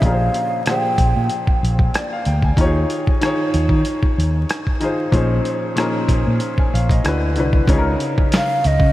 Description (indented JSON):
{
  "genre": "R&B, neo-soul",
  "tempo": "94 BPM",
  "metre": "4/4",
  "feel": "swing 54% on 16ths",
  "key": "Bb dorian",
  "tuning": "A4 = 440 Hz",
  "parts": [
    { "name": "breathy mellow shakuhachi", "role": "melody", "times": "0.0-1.6, 8.4-8.9 s", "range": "Eb5 to G5", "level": "-22 LUFS", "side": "right 1 dB", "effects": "analog delay" },
    { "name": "clear upright piano", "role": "accompaniment", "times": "0.0-8.9 s", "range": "Bb2 to Ab5", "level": "-21 LUFS", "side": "left 1 dB", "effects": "none" },
    { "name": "fretless electric bass", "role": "bass", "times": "0.0-8.9 s", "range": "Bb1 to Eb3", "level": "-18 LUFS", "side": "equal", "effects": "none" },
    { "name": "boom bap sampler-style drum kit", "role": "drums", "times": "0.0-8.9 s", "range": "hi-hat, kick drum, rim click, snare drum", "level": "-19 LUFS", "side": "equal", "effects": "none" }
  ],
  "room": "moderate huge ambient reverb, RT60 4.9 s",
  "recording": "dreamy mix soaked in reverb, vinyl crackle",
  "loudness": "-15 LUFS",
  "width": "side -15 dB against mid",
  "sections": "0.0-7.7 A section; 7.7-8.9 B section",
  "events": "none",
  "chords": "0.0 Bb13; 2.6 Eb9sus4; 5.1 Bbm11; 7.0 D69; 7.7 Db69",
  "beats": "| 0.02 0.66 1.29 1.93 | 2.57 3.21 3.85 4.49 | 5.12 5.76 6.40 7.04 | 7.68 8.32"
}